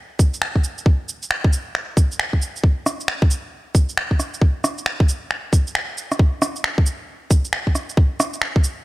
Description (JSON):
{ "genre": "future garage", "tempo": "135 BPM", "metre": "4/4", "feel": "swing 63% on 16ths", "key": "none", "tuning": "none", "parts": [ { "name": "electronic kick drum", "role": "drums", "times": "0.2-8.6 s", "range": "none", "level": "-15 LUFS", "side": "equal", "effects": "studio reverb" }, { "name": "electronic shaker, finger snaps and rim click", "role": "drums", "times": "0.2-8.8 s", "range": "none", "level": "-23 LUFS", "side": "right 1 dB", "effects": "studio reverb" } ], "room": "little or no reverb", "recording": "none", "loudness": "-18 LUFS", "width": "side -19 dB against mid", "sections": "0.0-8.8 A section", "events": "none", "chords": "none" }